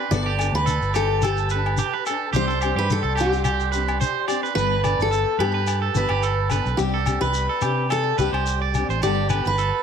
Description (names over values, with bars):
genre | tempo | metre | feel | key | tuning
highlife guitar band | 108 BPM | 4/4 | swing 54% on 16ths | G major | A4 = 440 Hz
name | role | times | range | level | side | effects
combo organ | sustained chords | 0.0-9.8 s | B4 to C6 | -36 LUFS | equal | none
electric guitar at the edge of break-up | arpeggios | 0.0-9.8 s | G4 to D5 | -26 LUFS | right 11 dB | slapback echo
picked steel-string acoustic guitar | melody | 0.1-9.8 s | G4 to D5 | -24 LUFS | left 1 dB | slapback echo
nylon-string guitar | accompaniment | 0.1-9.5 s | G3 to A4 | -32 LUFS | left 8 dB | none
fingered electric bass | bass | 0.1-9.7 s | G1 to C3 | -24 LUFS | right 1 dB | none
shekere | percussion | 0.1-9.7 s | none | -29 LUFS | left 4 dB | none
agogo bells | percussion | 0.4-9.4 s | none | -32 LUFS | left 6 dB | none
room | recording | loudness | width
light reverb, studio ambience | none | -19 LUFS | side -7 dB against mid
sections
0.0-4.6 A section; 4.6-9.8 B section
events
none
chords
0.1 Gadd9; 2.3 Csus2; 4.6 Gadd9; 6.8 Csus2; 9.0 Gadd9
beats
| 0.12 0.67 1.23 1.79 | 2.34 2.90 3.46 4.01 | 4.57 5.13 5.68 6.24 | 6.80 7.35 7.91 8.47 | 9.02 9.58